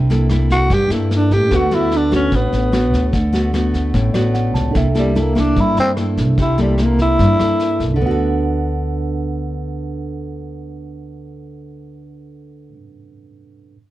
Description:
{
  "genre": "bossa nova",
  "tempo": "148 BPM",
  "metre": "4/4",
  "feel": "straight",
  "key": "D major",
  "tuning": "A4 = 441 Hz",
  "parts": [
    { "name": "mellow tine electric piano", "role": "accompaniment", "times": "0.0-13.8 s", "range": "D4 to A5", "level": "-27 LUFS", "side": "right 5 dB", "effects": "none" },
    { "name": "nylon-string guitar", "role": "accompaniment", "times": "0.0-12.8 s", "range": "G2 to A4", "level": "-21 LUFS", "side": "left 1 dB", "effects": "none" },
    { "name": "upright bass", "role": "bass", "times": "0.0-12.7 s", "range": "A1 to G2", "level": "-19 LUFS", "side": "equal", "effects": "none" },
    { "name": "vintage brush drum kit", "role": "drums", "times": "0.1-7.9 s", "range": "kick drum, rim click, snare drum", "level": "-24 LUFS", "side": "equal", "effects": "none" },
    { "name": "growling tenor saxophone", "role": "melody", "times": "0.5-7.9 s", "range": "G3 to G4", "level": "-17 LUFS", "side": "equal", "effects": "none" }
  ],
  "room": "light reverb",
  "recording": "dark, warm production",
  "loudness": "-14 LUFS",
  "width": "side -15 dB against mid",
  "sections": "0.0-8.0 A section; 8.0-11.3 B section",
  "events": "tenor saxophone solo 0.0-8.0; tine electric piano fill 3.9-4.8",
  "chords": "0.0 C13; 1.5 D6; 4.8 C13; 8.0 D6",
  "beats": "0.30 0.70 1.11 | 1.51 1.92 2.32 2.73 | 3.13 3.54 3.94 4.35 | 4.75 5.16 5.57 5.97 | 6.38 6.79 7.19 7.60 | 8.00 8.41 8.82 9.22 | 9.63 10.03 10.44 10.85"
}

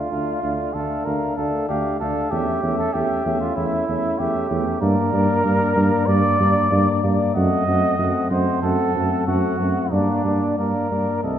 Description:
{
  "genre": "classical, brass quintet",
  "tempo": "95 BPM",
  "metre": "4/4",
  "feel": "rubato",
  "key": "G minor from 4.8 s",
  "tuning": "A4 = 440 Hz",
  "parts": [
    { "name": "mellow cornet", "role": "melody", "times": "0.0-11.4 s", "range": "D5 to F#5", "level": "-29 LUFS", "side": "left 6 dB", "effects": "none" },
    { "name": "mellow trumpet", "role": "second line", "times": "0.0-11.4 s", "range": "D4 to D#5", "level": "-23 LUFS", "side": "right 2 dB", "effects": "none" },
    { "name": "clear trombone", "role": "accompaniment", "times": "0.0-11.4 s", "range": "A3 to Bb3", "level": "-27 LUFS", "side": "equal", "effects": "none" },
    { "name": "warm French horn", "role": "accompaniment", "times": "0.0-11.4 s", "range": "C4 to D4", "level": "-27 LUFS", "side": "left 2 dB", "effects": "none" },
    { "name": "dark tuba", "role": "bass", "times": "0.1-11.4 s", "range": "C2 to G2", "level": "-22 LUFS", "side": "right 1 dB", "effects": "none" }
  ],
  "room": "wet scoring stage reverb, RT60 1.8 s",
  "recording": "recorded in a church or concert hall",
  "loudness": "-18 LUFS",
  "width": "side -10 dB against mid",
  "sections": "0.0-11.4 A section",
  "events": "none",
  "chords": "0.0 Dm; 2.3 A7/E; 4.8 Gm; 7.4 F#dim7; 9.9 Gm",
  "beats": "0.42 1.06 1.69 | 2.31 2.94 3.56 4.19 | 4.81 5.45 6.08 6.71 | 7.35 7.99 8.62 9.27 | 9.91 10.58 11.23"
}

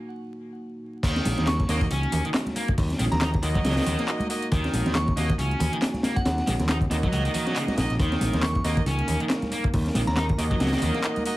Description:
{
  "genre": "breakbeat, breaks",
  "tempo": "138 BPM",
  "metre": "4/4",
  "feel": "swing 57% on 16ths",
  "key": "Eb minor",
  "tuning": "A4 = 440 Hz",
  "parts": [
    { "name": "dark analog pad", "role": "sustained chords", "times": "0.0-11.4 s", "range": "Bb3 to Bb4", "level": "-34 LUFS", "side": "equal", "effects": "chorus, sidechain pumping" },
    { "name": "distorted electric guitar", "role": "riff", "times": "1.0-11.0 s", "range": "Db3 to Eb4", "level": "-31 LUFS", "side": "equal", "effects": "distortion, tube saturation, ping-pong delay" },
    { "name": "modern bright picked electric bass", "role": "bass", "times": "1.0-10.9 s", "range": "Bb1 to Eb2", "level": "-26 LUFS", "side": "equal", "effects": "none" },
    { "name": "crunchy breakbeat drum kit", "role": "drums", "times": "1.0-11.4 s", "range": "crash cymbal, hi-hat, kick drum, snare drum", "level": "-26 LUFS", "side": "equal", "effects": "none" },
    { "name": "garage drum kit", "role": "drums", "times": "1.0-11.4 s", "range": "handclaps, hi-hat", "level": "-34 LUFS", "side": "equal", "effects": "none" },
    { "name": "congas", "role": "percussion", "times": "1.3-11.2 s", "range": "none", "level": "-33 LUFS", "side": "right 2 dB", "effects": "none" },
    { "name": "glassy synth bell", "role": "melody", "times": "1.5-10.2 s", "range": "Gb5 to Db6", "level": "-35 LUFS", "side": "equal", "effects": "chorus, old record sound, vintage 12-bit sampler grit, ping-pong delay" },
    { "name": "warm horn section", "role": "stabs", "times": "1.7-11.4 s", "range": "Bb3 to Eb5", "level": "-33 LUFS", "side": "right 2 dB", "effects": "ping-pong delay" }
  ],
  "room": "light reverb",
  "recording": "vinyl crackle",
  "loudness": "-22 LUFS",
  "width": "side -17 dB against mid",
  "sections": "0.0-1.0 A section; 1.0-11.4 B section",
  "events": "break 0.0-1.0; drop 1.0-11.4",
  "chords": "0.0 Ebm",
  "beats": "0.17 0.60 | 1.04 1.47 1.91 2.34 | 2.78 3.21 3.65 4.08 | 4.52 4.95 5.39 5.82 | 6.26 6.69 7.13 7.56 | 8.00 8.43 8.87 9.30 | 9.73 10.17 10.61 11.04"
}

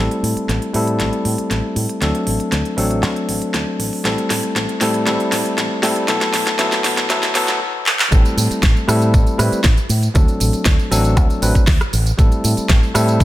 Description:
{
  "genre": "nu-disco, nu disco",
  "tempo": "118 BPM",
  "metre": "4/4",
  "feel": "straight",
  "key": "A dorian",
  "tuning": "A4 = 439 Hz",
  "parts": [
    { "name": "bell-like tine electric piano", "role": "accompaniment", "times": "0.0-13.2 s", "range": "F#3 to B4", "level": "-19 LUFS", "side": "left 1 dB", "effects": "sidechain pumping, low-pass filter, ping-pong delay" },
    { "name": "fingered electric bass with an envelope filter", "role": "bass", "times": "0.0-13.2 s", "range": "A1 to B2", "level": "-20 LUFS", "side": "equal", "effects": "none" },
    { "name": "pop drum kit", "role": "drums", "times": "0.1-13.2 s", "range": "handclaps, hi-hat, rim click, snare drum, tambourine", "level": "-20 LUFS", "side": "right 1 dB", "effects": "high-pass filter on snare, studio reverb, high-pass filter on hats, high-pass filter on perc" },
    { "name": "electronic kick drum", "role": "drums", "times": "8.1-13.2 s", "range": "none", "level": "-13 LUFS", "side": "equal", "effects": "studio reverb" }
  ],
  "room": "light reverb",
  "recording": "high-pass filter",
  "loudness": "-14 LUFS",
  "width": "side -15 dB against mid",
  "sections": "0.0-8.1 A section; 8.1-13.2 B section",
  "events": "build-up 0.0-8.1; drum fill 0.0-7.6, 7.9; filter sweep on tine electric piano 0.0-8.1; filter sweep 0.0-8.1; drop 8.1-13.2",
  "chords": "0.0 Am7; 2.0 D7; 4.1 Am7; 6.1 B5; 8.1 Am7; 10.2 D7; 12.2 Am7",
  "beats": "0.49 1.00 1.51 | 2.02 2.52 3.03 3.54 | 4.05 4.56 5.07 5.58 | 6.08 6.59 7.10 7.61 | 8.12 8.63 9.14 9.64 | 10.15 10.66 11.17 11.68 | 12.19 12.70 13.20"
}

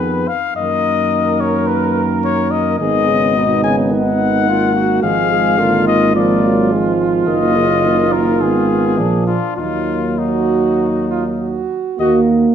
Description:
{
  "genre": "classical, brass quintet",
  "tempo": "99-108 BPM",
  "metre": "4/4",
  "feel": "rubato",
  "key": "Eb minor",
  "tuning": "A4 = 440 Hz",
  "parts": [
    { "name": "mellow trumpet", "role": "melody", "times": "0.0-12.2 s", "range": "Eb4 to Ab5", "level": "-18 LUFS", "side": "left 8 dB", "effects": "none" },
    { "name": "mellow flugelhorn", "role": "second line", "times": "0.0-12.2 s", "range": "D4 to Bb4", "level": "-20 LUFS", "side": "right 6 dB", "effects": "none" },
    { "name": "mellow French horn", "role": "accompaniment", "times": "0.0-12.2 s", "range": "Ab3 to Gb4", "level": "-21 LUFS", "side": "left 3 dB", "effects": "none" },
    { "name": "mellow euphonium", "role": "accompaniment", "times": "0.0-12.5 s", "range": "Cb3 to Bb3", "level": "-20 LUFS", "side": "right 2 dB", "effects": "none" },
    { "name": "mellow tuba", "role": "bass", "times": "0.0-12.5 s", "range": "Gb1 to Gb2", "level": "-19 LUFS", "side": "right 3 dB", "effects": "none" }
  ],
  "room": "wet recital hall reverb, RT60 1.6 s",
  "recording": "none",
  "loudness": "-13 LUFS",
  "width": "side -8 dB against mid",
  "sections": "0.0-12.0 A section",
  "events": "none",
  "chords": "0.0 Fm7b5; 0.6 Ebm/Gb; 2.8 Abm; 5.0 Bb7/Ab; 7.3 Ebm/Gb; 8.4 Fdim/Ab; 9.0 Bb7; 9.6 Ebm",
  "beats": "0.01 | 0.57 1.13 1.69 2.24 | 2.80 3.36 3.91 4.47 | 5.03 5.59 6.15 6.71 | 7.28 7.84 8.41 8.99 | 9.58 10.19 10.80 11.40 | 12.00"
}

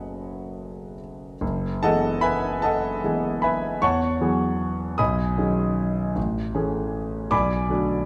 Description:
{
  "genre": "classical, impressionist solo piano",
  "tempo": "44-53 BPM (dotted quarters)",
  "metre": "6/8",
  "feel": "rubato",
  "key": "F# dorian",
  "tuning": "A4 = 441 Hz",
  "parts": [
    { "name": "warm concert grand piano", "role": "solo", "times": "0.0-8.1 s", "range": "F#1 to D#6", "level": "-25 LUFS", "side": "equal", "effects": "none" }
  ],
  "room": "moderate recital hall reverb, RT60 1.2 s",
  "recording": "dark, warm production, lossy compression artefacts",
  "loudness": "-24 LUFS",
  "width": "mono",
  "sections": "0.0-1.4 A section; 1.4-8.1 B section",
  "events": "none",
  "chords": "0.0 F#madd9; 1.4 F#m11; 3.8 Eadd9; 5.0 B69; 6.2 Amaj7; 7.3 Bm7",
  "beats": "0.08 | 1.42 2.63 | 3.82 4.99 | 6.16 7.32"
}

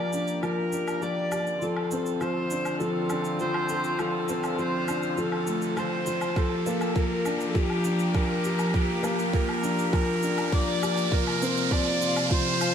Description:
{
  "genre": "piano and strings electronica",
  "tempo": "101 BPM",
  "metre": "4/4",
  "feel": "straight",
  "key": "G minor",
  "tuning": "A4 = 440 Hz",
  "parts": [
    { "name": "dark viola", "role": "melody", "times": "0.0-12.7 s", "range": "G4 to D5", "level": "-30 LUFS", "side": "equal", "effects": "none" },
    { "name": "dark chamber string section", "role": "sustained chords", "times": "0.0-12.7 s", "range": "C3 to G4", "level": "-32 LUFS", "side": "equal", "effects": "sidechain pumping, low-pass filter" },
    { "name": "dark upright piano", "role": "riff", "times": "0.0-12.7 s", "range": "F3 to A4", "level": "-29 LUFS", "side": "left 2 dB", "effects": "ping-pong delay" },
    { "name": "riser", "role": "sound effects", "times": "0.7-12.7 s", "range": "none", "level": "-34 LUFS", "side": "right 3 dB", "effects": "none" },
    { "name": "shaker and woodblock", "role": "drums", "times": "0.1-12.7 s", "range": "none", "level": "-37 LUFS", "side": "equal", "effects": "none" },
    { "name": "electronic kick drum", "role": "drums", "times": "6.4-12.4 s", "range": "none", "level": "-26 LUFS", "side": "right 1 dB", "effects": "none" }
  ],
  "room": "wet echo chamber reverb, RT60 1.8 s, studio reverb",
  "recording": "dark, warm production",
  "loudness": "-24 LUFS",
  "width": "side -8 dB against mid",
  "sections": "0.0-12.7 A section",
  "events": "build-up 0.0-12.7; riser 0.7-12.7",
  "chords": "0.0 Gm7; 1.6 Dm7; 6.4 Gm7; 11.1 Bbsus2",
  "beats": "0.43 1.02 | 1.62 2.21 2.81 3.40 | 3.99 4.59 5.18 5.78 | 6.37 6.96 7.56 8.15 | 8.75 9.34 9.94 10.53 | 11.12 11.72 12.31"
}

